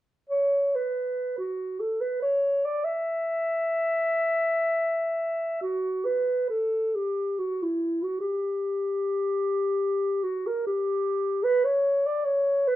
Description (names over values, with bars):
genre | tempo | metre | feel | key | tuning
classical, free, expressive piece for unaccompanied clarinet | 46-76 BPM | 3/4 | rubato | unclear | A4 = 442 Hz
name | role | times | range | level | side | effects
dark clarinet | solo | 0.3-12.8 s | E4 to E5 | -24 LUFS | equal | none
room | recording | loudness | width
light reverb | none | -24 LUFS | side -14 dB against mid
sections
0.3-5.6 A section; 5.6-12.8 B section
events
none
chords
none